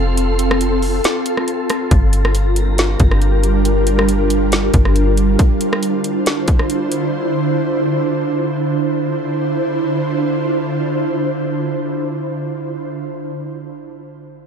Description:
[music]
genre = hip hop, atmospheric cloud-rap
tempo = 138 BPM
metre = 4/4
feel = half-time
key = D minor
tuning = A4 = 440 Hz
[part]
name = ethereal airy pad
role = sustained chords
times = 0.0-12.9 s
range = D3 to C5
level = -18 LUFS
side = right 1 dB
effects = ensemble chorus, built-in reverb, sidechain pumping
[part]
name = clean 808-style bass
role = bass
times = 0.0-5.4 s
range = F1 to G1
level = -16 LUFS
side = equal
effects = none
[part]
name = wind-like tuned noise texture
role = texture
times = 0.0-3.6 s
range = G4 to C6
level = -29 LUFS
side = left 1 dB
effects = built-in reverb
[part]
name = trap drum kit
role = drums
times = 0.2-7.0 s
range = hi-hat, kick drum, rim click, snare drum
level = -17 LUFS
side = equal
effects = none
[sound]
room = light reverb, digital ambience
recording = dark, warm production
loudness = -15 LUFS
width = side -7 dB against mid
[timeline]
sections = 0.0-8.9 A section; 8.9-12.3 B section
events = break 1.0-1.9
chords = 0.0 F; 1.9 Gm7; 5.4 Dm7

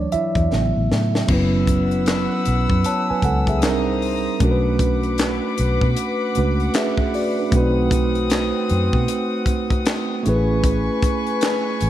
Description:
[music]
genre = R&B, neo-soul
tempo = 77 BPM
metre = 4/4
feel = swing 61% on 16ths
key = unclear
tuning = A4 = 441 Hz
[part]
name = mellow tine electric piano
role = accompaniment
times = 0.0-11.9 s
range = C#3 to A5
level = -21 LUFS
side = right 2 dB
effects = slow stereo tremolo
[part]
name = vintage muted fingered electric bass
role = bass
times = 0.0-11.9 s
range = F#1 to B2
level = -21 LUFS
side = equal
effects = none
[part]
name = tight funk drum kit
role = drums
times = 0.1-11.9 s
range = crash cymbal, handclaps, hi-hat, kick drum, snare drum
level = -23 LUFS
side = left 1 dB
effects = none
[part]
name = warm chamber string section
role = sustained chords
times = 1.3-11.9 s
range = C4 to E6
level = -26 LUFS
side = left 3 dB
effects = none
[sound]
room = moderate plate reverb, RT60 2.5 s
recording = dreamy mix soaked in reverb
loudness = -17 LUFS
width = side -12 dB against mid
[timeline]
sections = 0.0-1.3 A section; 1.3-11.9 B section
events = tine electric piano solo 0.0-1.3; drum fill 0.5-1.3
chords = 0.0 Dmaj7; 0.5 A69; 1.3 F#7sus4; 3.6 Cm9; 4.4 Bm9; 7.5 B7b9; 10.2 Amaj9

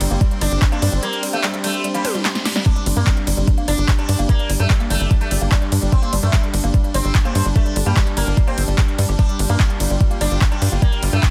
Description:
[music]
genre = psychedelic trance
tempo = 147 BPM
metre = 4/4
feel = straight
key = G minor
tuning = A4 = 440 Hz
[part]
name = bubbling stepped-filter texture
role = sustained chords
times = 0.0-11.3 s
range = G3 to F4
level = -32 LUFS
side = equal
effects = chorus, built-in reverb, sidechain pumping
[part]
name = woody wave-folded pluck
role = riff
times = 0.0-11.3 s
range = F3 to G4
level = -30 LUFS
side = equal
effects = chorus, sidechain pumping, delay
[part]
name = tight sequencer bass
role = bass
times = 0.0-11.2 s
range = G1 to G2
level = -21 LUFS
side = equal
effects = none
[part]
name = big-room dance drum kit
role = drums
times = 0.0-11.3 s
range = handclaps, hi-hat, ride cymbal, snare drum, toms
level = -27 LUFS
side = equal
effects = overdrive
[part]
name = warbly tape-like pad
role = texture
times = 0.0-11.3 s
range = D4 to C6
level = -34 LUFS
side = equal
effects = chorus, built-in reverb, sidechain pumping
[part]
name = electronic kick drum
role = drums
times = 0.2-11.3 s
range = none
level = -18 LUFS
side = equal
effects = overdrive
[part]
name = sitar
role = melody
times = 0.4-11.3 s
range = G3 to D4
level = -29 LUFS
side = equal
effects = phaser, sidechain pumping, tape echo
[part]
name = reverse cymbal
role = sound effects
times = 2.0-2.7 s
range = none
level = -34 LUFS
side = equal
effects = none
[sound]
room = little or no reverb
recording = dense, heavily limited modern master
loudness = -18 LUFS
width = mono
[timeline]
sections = 0.0-11.3 A section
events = reverse cymbal 2.0-2.7; drum fill 2.0-2.7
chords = 0.0 G5

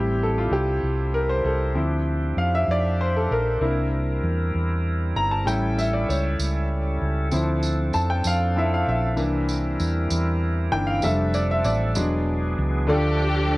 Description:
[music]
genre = slow gospel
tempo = 65 BPM (dotted quarters)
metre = 6/8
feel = straight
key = unclear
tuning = A4 = 440 Hz
[part]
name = bright baby grand piano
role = accompaniment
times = 0.0-13.6 s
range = D3 to Bb5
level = -24 LUFS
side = left 1 dB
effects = none
[part]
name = bright tonewheel organ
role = sustained chords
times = 0.0-13.6 s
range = E3 to Bb4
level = -30 LUFS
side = right 1 dB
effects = fast rotary speaker, overdrive
[part]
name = hollow-body short-scale fingered electric bass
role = bass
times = 0.0-13.6 s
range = E1 to F2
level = -24 LUFS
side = equal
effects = none
[part]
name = tambourine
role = percussion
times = 5.5-12.2 s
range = none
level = -34 LUFS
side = right 4 dB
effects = none
[part]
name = rich studio string section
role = melody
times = 12.9-13.6 s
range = D4 to G4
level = -25 LUFS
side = left 1 dB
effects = none
[sound]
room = light reverb, small room ambience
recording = worn, warbling old tape, cassette tape, warbly pitch drift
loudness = -20 LUFS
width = side -20 dB against mid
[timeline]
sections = 0.0-12.9 A section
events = grand piano solo 0.0-12.9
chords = 0.0 Am7; 1.8 Dm7; 3.6 C7; 5.5 A7; 7.3 Dm7; 9.2 C7; 11.0 F6; 12.0 E7; 12.9 Dm

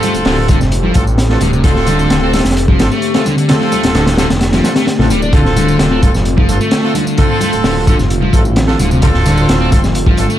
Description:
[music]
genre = breakbeat, breaks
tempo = 130 BPM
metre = 4/4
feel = straight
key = D minor pentatonic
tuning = A4 = 443 Hz
[part]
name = warbly tape-like pad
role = sustained chords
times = 0.0-10.4 s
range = D3 to G4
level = -19 LUFS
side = left 2 dB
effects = chorus, built-in reverb, phaser, sidechain pumping
[part]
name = fuzz guitar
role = riff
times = 0.0-10.4 s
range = C3 to D4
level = -17 LUFS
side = left 1 dB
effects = distortion, vintage 12-bit sampler grit, ping-pong delay
[part]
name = clear horn section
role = stabs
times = 0.0-10.3 s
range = C4 to A4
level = -19 LUFS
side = right 2 dB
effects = ping-pong delay
[part]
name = crunchy breakbeat drum kit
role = drums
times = 0.0-10.3 s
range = hi-hat, kick drum, snare drum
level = -14 LUFS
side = equal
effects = none
[part]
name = tambourine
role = drums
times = 0.0-10.4 s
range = none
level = -29 LUFS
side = equal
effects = overdrive
[part]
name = congas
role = percussion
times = 0.0-10.2 s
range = none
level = -22 LUFS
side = right 1 dB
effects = none
[part]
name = phased detuned saw bass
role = bass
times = 0.1-10.3 s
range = D1 to A1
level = -16 LUFS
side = equal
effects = phaser
[sound]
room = small room ambience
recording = vinyl crackle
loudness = -10 LUFS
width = side -12 dB against mid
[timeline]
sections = 0.0-10.4 A section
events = none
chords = 0.0 Dm7

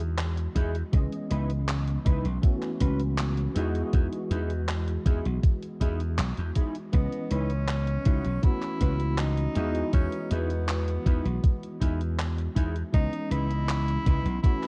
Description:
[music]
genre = vaporwave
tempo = 80 BPM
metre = 4/4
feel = straight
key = E major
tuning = A4 = 439 Hz
[part]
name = bell-like tine electric piano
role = accompaniment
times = 0.0-14.7 s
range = E3 to D#5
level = -37 LUFS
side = equal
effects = ensemble chorus, vintage 12-bit sampler grit, tape echo
[part]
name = slap bass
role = bass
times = 0.0-14.4 s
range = B1 to E2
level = -30 LUFS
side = equal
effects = none
[part]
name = gated 80s digital drum machine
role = drums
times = 0.0-14.7 s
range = handclaps, hi-hat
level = -39 LUFS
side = equal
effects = gated reverb, studio reverb
[part]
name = mellow electric guitar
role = riff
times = 0.6-14.3 s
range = C#4 to B4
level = -40 LUFS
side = equal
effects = analog chorus, vintage 12-bit sampler grit, tape echo
[part]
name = electronic kick drum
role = drums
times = 0.6-14.6 s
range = none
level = -25 LUFS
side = equal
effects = studio reverb
[part]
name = mellow tenor saxophone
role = melody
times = 6.9-14.7 s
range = B3 to E4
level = -37 LUFS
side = equal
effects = vintage 12-bit sampler grit, tape echo
[sound]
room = little or no reverb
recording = dark, warm production, cassette tape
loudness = -27 LUFS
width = mono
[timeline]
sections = 0.0-14.7 A section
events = none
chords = 0.0 Emaj7; 0.9 C#m9; 2.4 A69; 3.6 Emaj7; 6.9 C#m9; 8.4 A69; 9.6 Emaj7; 12.9 C#m9

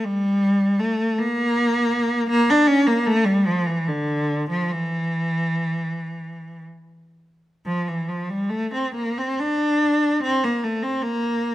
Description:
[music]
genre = classical, free, expressive piece for unaccompanied cello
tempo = 54-81 BPM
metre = 3/4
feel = rubato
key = D minor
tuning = A4 = 445 Hz
[part]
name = rich cello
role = solo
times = 0.0-11.5 s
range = D3 to D4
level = -20 LUFS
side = equal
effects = none
[sound]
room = moderate recital hall reverb, RT60 1.5 s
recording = close, detailed microphones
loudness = -19 LUFS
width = side -15 dB against mid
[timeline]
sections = 0.0-11.5 A section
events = none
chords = none

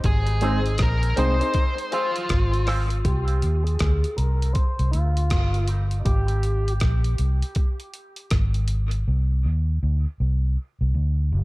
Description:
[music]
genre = dub reggae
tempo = 80 BPM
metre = 4/4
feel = swing 62% on 16ths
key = C minor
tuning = A4 = 439 Hz
[part]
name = vintage muted fingered electric bass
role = bass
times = 0.0-11.4 s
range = G1 to Eb2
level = -21 LUFS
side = equal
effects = none
[part]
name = boom bap sampler-style drum kit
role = drums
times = 0.0-9.1 s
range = hi-hat, kick drum, rim click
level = -25 LUFS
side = equal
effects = none
[part]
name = high-gain lead guitar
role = melody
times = 0.1-6.7 s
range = F4 to C5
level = -29 LUFS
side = equal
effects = distortion, low-pass filter, dub echo
[part]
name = electric guitar with an envelope filter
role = accompaniment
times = 0.4-5.9 s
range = G3 to F4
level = -32 LUFS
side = right 4 dB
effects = spring reverb, high-pass filter, low-pass filter, dub echo
[part]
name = warm upright piano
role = stabs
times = 0.4-3.0 s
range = C4 to C5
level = -30 LUFS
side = left 4 dB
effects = high-pass filter, low-pass filter, dub echo
[sound]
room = little or no reverb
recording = dark, warm production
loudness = -20 LUFS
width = side -21 dB against mid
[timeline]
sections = 0.0-3.1 A section; 3.1-11.4 B section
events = part muted 9.1-11.4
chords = 0.0 Ab; 1.5 Fm; 3.1 Cm; 6.1 Ab; 7.6 N.C.; 9.1 Cm

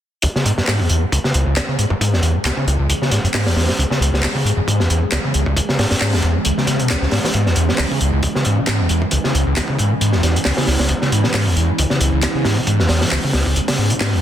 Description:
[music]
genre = breakbeat, breaks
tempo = 135 BPM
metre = 4/4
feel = swing 55% on 16ths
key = C# minor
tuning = A4 = 439 Hz
[part]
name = warbly tape-like pad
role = sustained chords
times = 1.1-14.2 s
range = E3 to G#4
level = -25 LUFS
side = right 2 dB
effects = chorus, built-in reverb, sidechain pumping
[part]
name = screaming distorted acid line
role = riff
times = 0.2-14.2 s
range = B1 to E3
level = -17 LUFS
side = equal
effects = distortion, wide subtle chorus, vintage 12-bit sampler grit
[part]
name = crunchy breakbeat drum kit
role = drums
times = 0.2-14.1 s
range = hi-hat, kick drum, snare drum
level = -20 LUFS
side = equal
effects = high-pass filter on kick, high-pass filter on hats, high-pass filter on snare, high-pass filter on room
[part]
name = electronic handclaps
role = drums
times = 0.7-14.1 s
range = none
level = -27 LUFS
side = equal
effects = none
[sound]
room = light reverb, studio ambience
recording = dense, heavily limited modern master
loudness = -15 LUFS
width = side -10 dB against mid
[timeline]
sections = 0.2-14.2 A section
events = filter sweep on acid bass 0.2-14.2; kick drops out 13.6-14.2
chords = 0.2 C#m

